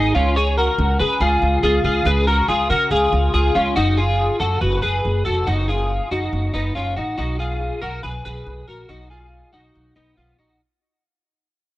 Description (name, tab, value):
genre	jangly indie pop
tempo	141 BPM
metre	4/4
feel	straight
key	unclear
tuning	A4 = 440 Hz
part	twelve-string electric guitar	arpeggios	0.0-10.6 s	Cb4 to Db5	-19 LUFS	left 1 dB	ensemble chorus
part	upright bass	bass	0.0-10.6 s	F1 to Db3	-21 LUFS	equal	none
room	small room ambience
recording	dry, gritty hardware recording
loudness	-17 LUFS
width	side -16 dB against mid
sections	0.0-3.8 A section; 3.8-10.6 B section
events	fade-out 3.8-10.6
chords	0.1 Db; 3.8 Gbm6; 7.2 Cb6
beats	| 0.36 0.79 1.21 1.64 | 2.06 2.49 2.91 3.34 | 3.77 4.19 4.62 5.04 | 5.47 5.90 6.33 6.75 | 7.18 7.61 8.03 8.46 | 8.89 9.32 9.74 10.17